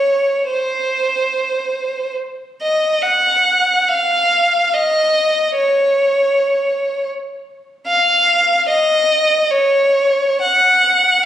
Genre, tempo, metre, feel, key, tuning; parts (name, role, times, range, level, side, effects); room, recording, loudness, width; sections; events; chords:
classical, free, expressive piece for unaccompanied violin; 62-78 BPM; 3/4; rubato; Db major; A4 = 440 Hz
rich violin; solo; 0.0-11.2 s; C5 to Gb5; -13 LUFS; equal
light reverb; recorded on a phone in the room, club reverb; -13 LUFS; side -11 dB against mid
0.0-11.3 A section